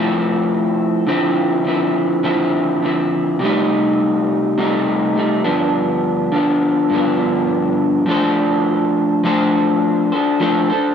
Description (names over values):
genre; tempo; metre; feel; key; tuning
indie pop; 103 BPM; 4/4; swing 60% on 16ths; F lydian; A4 = 438 Hz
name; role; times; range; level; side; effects
electric guitar through a small old amp; solo; 0.0-10.9 s; G2 to C5; -15 LUFS; equal; wide subtle chorus, warbly pitch drift
room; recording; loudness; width
light reverb; dark, warm production; -15 LUFS; side -8 dB against mid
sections
0.0-8.1 A section; 8.1-10.9 B section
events
none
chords
0.0 Fmaj7; 1.1 Dm9; 3.4 Cm6; 5.5 G7; 8.1 F6